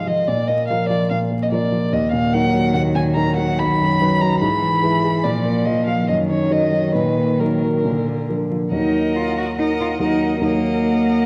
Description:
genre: quick classical-period movement for piano quintet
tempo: 143 BPM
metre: 4/4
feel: rubato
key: Eb minor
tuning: A4 = 440 Hz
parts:
  - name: dark violin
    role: melody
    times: 0.0-11.3 s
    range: Bb4 to B5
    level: -24 LUFS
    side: equal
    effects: none
  - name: rich cello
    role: second line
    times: 0.0-11.3 s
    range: D3 to Gb4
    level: -25 LUFS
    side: equal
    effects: none
  - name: warm concert grand piano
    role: accompaniment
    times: 0.0-11.3 s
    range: B1 to Eb5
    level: -22 LUFS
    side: equal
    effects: none
  - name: rich violin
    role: second line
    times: 8.7-11.3 s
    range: Eb5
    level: -32 LUFS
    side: equal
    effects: none
  - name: rich viola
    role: accompaniment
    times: 8.7-11.3 s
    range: Bb4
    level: -29 LUFS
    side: equal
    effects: none
room: wet recital hall reverb, RT60 1.7 s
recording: worn, warbling old tape, cassette tape, vinyl crackle, warbly pitch drift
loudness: -19 LUFS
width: mono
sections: 0.0-8.7 A section; 8.7-11.3 A section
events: none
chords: 0.3 Bb; 1.9 Ebm; 3.6 B; 4.4 E/G#; 5.2 Bb; 6.1 Ebm/Gb; 7.0 Ebm/Bb; 7.8 Bb; 8.7 Ebm

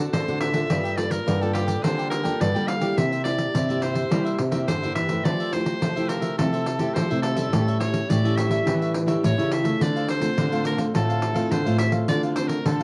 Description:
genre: samba and choro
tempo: 105 BPM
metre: 4/4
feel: straight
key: D minor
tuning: A4 = 440 Hz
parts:
  - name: cavaquinho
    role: accompaniment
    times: 0.0-12.8 s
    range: D4 to G5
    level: -36 LUFS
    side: equal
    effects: cassette tape
  - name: nylon-string guitar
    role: accompaniment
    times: 0.0-12.8 s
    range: G2 to A4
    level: -30 LUFS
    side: equal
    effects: cassette tape
  - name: nylon-string guitar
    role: bass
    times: 0.0-12.8 s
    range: G2 to G3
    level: -28 LUFS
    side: equal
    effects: tube saturation
  - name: edgy soprano saxophone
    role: melody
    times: 0.1-12.8 s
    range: G4 to F5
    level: -32 LUFS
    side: equal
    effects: cassette tape
  - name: pandeiro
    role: percussion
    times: 0.1-12.8 s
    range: none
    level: -30 LUFS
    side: equal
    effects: none
room: moderate studio reverb, RT60 0.6 s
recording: home recording on cassette, vinyl crackle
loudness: -23 LUFS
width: mono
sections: 0.0-12.8 A section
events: none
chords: 0.0 D7; 0.7 Gm9; 3.0 C7; 5.3 Fmaj9; 7.5 A7; 9.8 Dm7

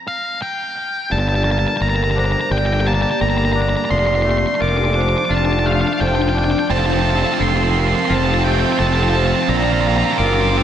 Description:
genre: post-rock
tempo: 86 BPM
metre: 4/4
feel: straight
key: G minor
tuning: A4 = 439 Hz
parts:
  - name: octave-fuzz lead guitar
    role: melody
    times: 0.0-10.6 s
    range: F5 to D6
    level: -21 LUFS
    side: left 1 dB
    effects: distortion, diffuse ambient delay
  - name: ethereal airy pad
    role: sustained chords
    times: 1.8-10.6 s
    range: F3 to A5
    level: -25 LUFS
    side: left 2 dB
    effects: ensemble chorus, built-in reverb
  - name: twangy electric guitar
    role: arpeggios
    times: 1.1-10.6 s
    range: F2 to F4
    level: -26 LUFS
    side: left 4 dB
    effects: diffuse ambient delay
  - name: vibraphone with medium hard mallets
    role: arpeggios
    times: 1.1-10.6 s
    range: A4 to D5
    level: -24 LUFS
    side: right 2 dB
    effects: diffuse ambient delay
  - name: fuzz fingered electric bass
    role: bass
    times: 1.1-10.6 s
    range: F1 to Bb1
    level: -19 LUFS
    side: equal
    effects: overdrive
  - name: distorted electric guitar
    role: riff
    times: 6.7-10.6 s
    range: C4 to F4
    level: -21 LUFS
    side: right 11 dB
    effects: overdrive
room: moderate huge ambient reverb, RT60 5.0 s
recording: dreamy mix soaked in reverb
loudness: -15 LUFS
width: side -10 dB against mid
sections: 0.0-1.1 A section; 1.1-10.6 B section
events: stop 0.0-1.1; build-up 1.1-10.6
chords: 0.0 N.C.; 1.1 Gmadd9; 3.9 Dm/F; 6.7 F; 9.5 Bbadd9

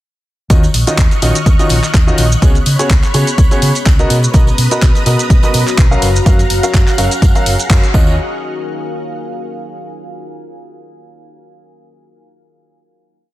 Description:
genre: piano house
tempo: 125 BPM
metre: 4/4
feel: swing 55% on 16ths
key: Eb minor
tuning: A4 = 440 Hz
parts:
  - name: analog string pad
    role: sustained chords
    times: 0.7-8.2 s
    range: B4 to Gb6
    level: -23 LUFS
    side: right 1 dB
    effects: ensemble chorus, sidechain pumping
  - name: clear upright piano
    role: riff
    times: 0.5-8.1 s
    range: Cb3 to F5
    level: -18 LUFS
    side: equal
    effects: sidechain pumping, digital delay
  - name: hollow-body short-scale fingered electric bass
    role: bass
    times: 0.5-8.2 s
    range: Gb1 to Db3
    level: -15 LUFS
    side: equal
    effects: sidechain pumping
  - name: electronic kick drum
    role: drums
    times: 0.5-8.0 s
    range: none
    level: -10 LUFS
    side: equal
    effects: overdrive, small room ambience
  - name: garage drum kit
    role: drums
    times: 0.5-7.9 s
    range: handclaps, hi-hat, shaker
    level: -20 LUFS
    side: equal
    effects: small room ambience
  - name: tambourine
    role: percussion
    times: 0.5-8.2 s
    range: none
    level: -28 LUFS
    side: right 7 dB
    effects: none
  - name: deep dark ambient pad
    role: texture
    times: 1.9-10.1 s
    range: Bb3 to Ab5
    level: -24 LUFS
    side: left 1 dB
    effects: chorus, built-in reverb, sidechain pumping
room: little or no reverb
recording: dense, heavily limited modern master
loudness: -9 LUFS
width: side -16 dB against mid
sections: 0.5-8.2 groove; 8.2-10.1 final note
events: fade-in on ambient pad 0.5-8.2; band accent 7.7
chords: 0.5 Ebm9; 2.4 Db7sus4; 4.1 Bmaj7; 6.0 Gbmaj7; 7.9 Ebm9; 8.2 Ebsus2

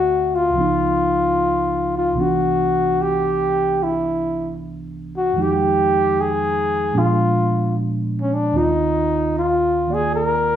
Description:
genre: jazz ballad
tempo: 75 BPM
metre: 4/4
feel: swing 68% on 8ths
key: unclear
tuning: A4 = 440 Hz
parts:
  - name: breathy flugelhorn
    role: melody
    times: 0.0-10.6 s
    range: Db4 to Bb4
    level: -18 LUFS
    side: left 1 dB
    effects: none
  - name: mellow tine electric piano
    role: accompaniment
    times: 0.0-10.6 s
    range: C2 to E5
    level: -22 LUFS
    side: right 2 dB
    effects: none
room: moderate large studio reverb, RT60 0.9 s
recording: small room ambience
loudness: -17 LUFS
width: side -10 dB against mid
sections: 0.0-10.6 A section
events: none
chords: 0.0 Dsus2; 0.5 Db9; 2.2 Cmaj9; 5.4 Fm7; 7.0 Bb7b9; 8.5 Eb5

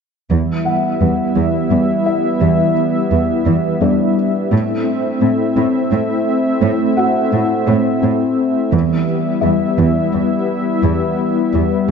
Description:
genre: cinematic, hybrid orchestral and electronic film score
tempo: 57 BPM (dotted quarters)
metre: 6/8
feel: straight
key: E minor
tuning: A4 = 439 Hz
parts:
  - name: warm analog pad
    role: sustained chords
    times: 0.3-11.9 s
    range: G3 to E5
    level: -17 LUFS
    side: left 2 dB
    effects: chorus, tremolo
  - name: harp-like synth pluck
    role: arpeggios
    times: 0.3-11.9 s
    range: E3 to C4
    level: -20 LUFS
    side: equal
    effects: chorus, ping-pong delay
  - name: warm symphonic cello section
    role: bass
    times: 0.3-11.6 s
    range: E2 to A2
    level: -18 LUFS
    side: right 3 dB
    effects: none
  - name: felt-muted upright piano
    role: texture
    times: 0.7-11.9 s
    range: D4 to F#5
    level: -24 LUFS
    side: left 2 dB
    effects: ping-pong delay
room: moderate scoring stage reverb, RT60 1.6 s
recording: nothing above 7.8 kHz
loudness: -14 LUFS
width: side -6 dB against mid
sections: 0.3-11.9 A section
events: build-up 0.3-11.9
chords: 0.3 Em; 4.5 Am; 8.7 Em

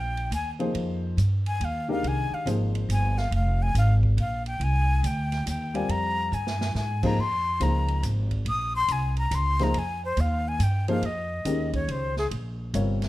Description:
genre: modal jazz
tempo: 140 BPM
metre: 3/4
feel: swing 65% on 8ths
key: F dorian, Bb dorian from 7.2 s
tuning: A4 = 440 Hz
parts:
  - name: breathy jazz flute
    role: melody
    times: 0.0-12.3 s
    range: Ab4 to Eb6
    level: -29 LUFS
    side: left 2 dB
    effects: plate reverb
  - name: upright bass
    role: bass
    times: 0.0-13.1 s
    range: F1 to Ab2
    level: -25 LUFS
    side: equal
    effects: none
  - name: open jazz drum kit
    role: drums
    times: 0.2-13.1 s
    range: crash cymbal, hi-hat, kick drum, ride cymbal, snare drum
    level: -38 LUFS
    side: right 2 dB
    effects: none
  - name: dark baby grand piano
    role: accompaniment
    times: 0.6-3.1, 5.7-13.1 s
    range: C3 to D5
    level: -29 LUFS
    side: left 2 dB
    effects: none
room: light reverb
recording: dark, warm production, faint mains hum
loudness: -23 LUFS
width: side -16 dB against mid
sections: 0.0-7.2 A section; 7.2-13.1 A section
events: flute solo 0.0-13.1; drum fill 6.3-6.8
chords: 0.0 Fm11; 7.2 Bbm11

